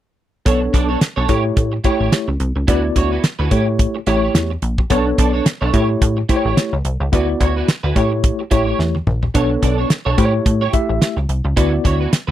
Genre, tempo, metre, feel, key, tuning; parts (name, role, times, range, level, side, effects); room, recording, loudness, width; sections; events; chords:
early-eighties boogie funk; 108 BPM; 4/4; swing 56% on 16ths; A4 = 440 Hz
tine electric piano; accompaniment; 0.5-12.1 s; A3 to E5; -19 LUFS; left 2 dB; overdrive, fast stereo tremolo
electric guitar at the edge of break-up; riff; 0.5-12.3 s; D4 to D5; -23 LUFS; right 6 dB; ensemble chorus
plucky analog bass; bass; 0.5-12.3 s; A1 to A2; -19 LUFS; equal
damped 70s drum kit; drums; 0.5-12.3 s; hi-hat, kick drum, snare drum, toms; -17 LUFS; equal
little or no reverb; dry, close 1970s-style studio recording; -15 LUFS; side -12 dB against mid
0.5-12.3 A section
drum fill 8.8-9.3
0.5 Bm9; 1.3 A7; 2.7 D69; 3.5 A7; 4.9 Bm9; 5.7 A7; 7.1 D69; 8.0 A7; 9.3 Bm9; 10.2 A7; 11.6 D69